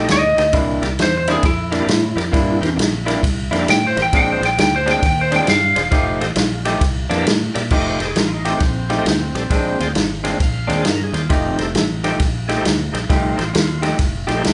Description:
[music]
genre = electric blues shuffle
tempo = 134 BPM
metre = 4/4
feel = swing 65% on 8ths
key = F mixolydian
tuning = A4 = 440 Hz
[part]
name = tonewheel organ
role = accompaniment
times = 0.0-14.4 s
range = C3 to F5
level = -29 LUFS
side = equal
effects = slow rotary speaker, overdrive
[part]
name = electric guitar through a small old amp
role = riff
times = 0.0-14.5 s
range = Bb2 to G4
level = -25 LUFS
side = equal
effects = none
[part]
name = fingered electric bass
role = bass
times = 0.0-14.5 s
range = E1 to Bb2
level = -26 LUFS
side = equal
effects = none
[part]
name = lightly driven lead guitar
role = melody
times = 0.1-6.8 s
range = E4 to G5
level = -20 LUFS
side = equal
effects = none
[part]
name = vintage drum kit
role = drums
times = 0.1-14.5 s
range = crash cymbal, kick drum, ride cymbal, snare drum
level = -21 LUFS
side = equal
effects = none
[sound]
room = light reverb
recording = band playing live in one room, nothing above 10.3 kHz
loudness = -18 LUFS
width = mono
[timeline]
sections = 0.0-7.7 A section; 7.7-14.5 A section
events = lead electric guitar solo 0.0-7.7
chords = 0.0 F9 (rootless); 0.5 C9; 4.1 Bb9; 5.9 F9; 6.8 C9; 7.7 F9; 9.5 Bb9; 11.3 F9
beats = 0.08 | 0.53 0.98 1.43 1.88 | 2.33 2.78 3.23 3.68 | 4.12 4.57 5.02 5.47 | 5.92 6.37 6.82 7.26 | 7.71 8.16 8.61 9.06 | 9.51 9.96 10.40 10.85 | 11.30 11.75 12.20 12.64 | 13.09 13.54 13.99 14.44

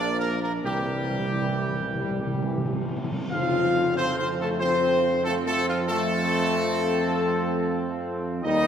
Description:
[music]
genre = classical, ceremonial fanfare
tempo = 93 BPM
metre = 4/4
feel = straight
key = F mixolydian from 3.3 s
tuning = A4 = 440 Hz
[part]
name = clear trumpet section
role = melody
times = 0.0-8.7 s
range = F4 to F5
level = -27 LUFS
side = equal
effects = none
[part]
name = clear trombone section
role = sustained chords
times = 0.0-8.7 s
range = F3 to Eb4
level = -31 LUFS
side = right 3 dB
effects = none
[part]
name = dark French horn section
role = sustained chords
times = 0.0-8.7 s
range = E3 to F4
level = -29 LUFS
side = left 4 dB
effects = none
[part]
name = warm tuba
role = bass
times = 0.0-8.7 s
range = Bb1 to F2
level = -30 LUFS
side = right 2 dB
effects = none
[part]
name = cymbal swell and tam-tam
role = percussion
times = 0.6-5.8 s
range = none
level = -38 LUFS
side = equal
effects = none
[part]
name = timpani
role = percussion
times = 0.6-3.3 s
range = C3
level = -31 LUFS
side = right 1 dB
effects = none
[sound]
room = wet church reverb, RT60 3.5 s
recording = none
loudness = -23 LUFS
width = side -8 dB against mid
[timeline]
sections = 0.0-3.3 A section; 3.3-8.7 B section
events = timpani fill 0.6-3.3; band accent 3.3-4.0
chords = 0.0 Bb; 0.6 C; 3.3 F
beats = | 0.64 1.30 1.97 2.63 | 3.31 3.96 4.61 5.25 | 5.89 6.52 7.16 7.80 | 8.45

